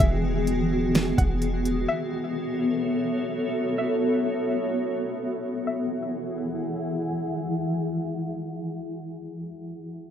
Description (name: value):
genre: hip hop, atmospheric cloud-rap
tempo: 127 BPM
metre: 4/4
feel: half-time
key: E major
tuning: A4 = 441 Hz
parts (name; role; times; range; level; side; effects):
- string-like resonator pluck; melody; 0.0-7.0 s; E5 to F#5; -31 LUFS; left 2 dB; chorus, low-pass filter, tape echo
- granular cloud pad; sustained chords; 0.0-9.5 s; D#3 to F#5; -25 LUFS; left 1 dB; built-in reverb, sidechain pumping, low-pass filter
- warm 808-style bass; bass; 0.0-1.9 s; E1; -28 LUFS; equal; none
- smooth R&B drum kit; drums; 0.0-1.8 s; hi-hat, kick drum, snare drum; -23 LUFS; equal; none
room: light reverb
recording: rough home demo mix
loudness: -24 LUFS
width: side -9 dB against mid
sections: 0.0-5.7 A section; 5.7-9.4 B section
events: none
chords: 0.0 Emaj9; 1.9 B7sus4; 5.7 Eadd9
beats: | 0.00 0.47 0.95 1.42 | 1.89 2.36 2.84 3.31 | 3.78 4.25 4.73 5.20 | 5.67 6.14 6.62 7.09 | 7.56 8.03 8.51 8.98